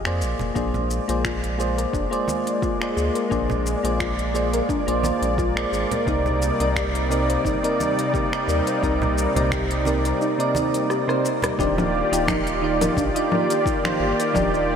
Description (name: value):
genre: sunset chillout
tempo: 87 BPM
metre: 4/4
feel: swing 55% on 16ths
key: unclear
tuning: A4 = 441 Hz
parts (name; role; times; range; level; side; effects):
- soft electric-piano-like synth keys; accompaniment; 0.0-14.8 s; C3 to D5; -25 LUFS; equal; chorus, auto-pan, low-pass filter, ping-pong delay, shimmer reverb
- warm sub bass; bass; 0.0-14.8 s; Eb1 to F2; -26 LUFS; equal; tube saturation
- deep house drum kit; drums; 0.1-14.7 s; congas, finger snaps, hi-hat, rim click, shaker; -30 LUFS; left 2 dB; none
- congas; percussion; 0.4-11.6 s; none; -33 LUFS; right 2 dB; none
- lush unison pad; sustained chords; 0.6-14.8 s; C3 to D5; -24 LUFS; equal; chorus, shimmer reverb
- soft round pluck; arpeggios; 0.6-14.5 s; D4 to C5; -30 LUFS; left 1 dB; ensemble chorus, ping-pong delay, shimmer reverb
- electronic kick drum; drums; 0.6-14.5 s; none; -30 LUFS; equal; none
room: wet lush hall reverb, RT60 2.7 s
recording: dreamy mix soaked in reverb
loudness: -20 LUFS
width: side -7 dB against mid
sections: 0.0-11.6 A section; 11.6-14.8 B section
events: drum fill 10.9-11.6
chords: 0.2 Bb7; 6.1 Cm7; 11.6 Ebmaj7